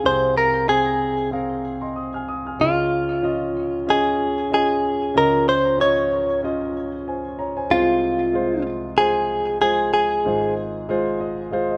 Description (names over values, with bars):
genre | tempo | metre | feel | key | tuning
pop | 94 BPM | 4/4 | swing 56% on 16ths | Db major | A4 = 441 Hz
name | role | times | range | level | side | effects
direct-recorded clean electric guitar | melody | 0.0-10.5 s | F4 to Db5 | -21 LUFS | equal | digital delay
warm grand piano | accompaniment | 0.0-11.8 s | Ab1 to F6 | -26 LUFS | equal | none
room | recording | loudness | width
moderate studio reverb, RT60 0.6 s | rough home demo mix | -21 LUFS | mono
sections
0.0-11.8 A section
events
grand piano fill 10.9-11.8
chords
0.0 Fm/C; 2.6 Dbadd9; 7.7 Fm/C; 10.3 Ab6